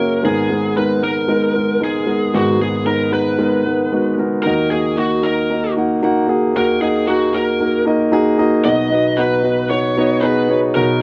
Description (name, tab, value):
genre	pop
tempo	114 BPM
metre	4/4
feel	straight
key	unclear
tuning	A4 = 441 Hz
part	lead guitar through a small cranked amp	melody	0.0-11.0 s	F#4 to D#5	-22 LUFS	equal	overdrive, slapback echo
part	dark baby grand piano	accompaniment	0.0-11.0 s	F#1 to F#5	-18 LUFS	equal	none
room	light reverb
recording	recorded outdoors, with no room sound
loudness	-17 LUFS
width	mono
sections	0.0-4.4 A section; 4.4-11.0 B section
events	none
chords	0.2 G#madd9; 4.4 D#m; 8.7 B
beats	| 0.24 0.77 1.29 1.82 | 2.34 2.87 3.39 3.92 | 4.45 4.97 5.50 6.02 | 6.55 7.07 7.60 8.12 | 8.65 9.18 9.70 10.23 | 10.75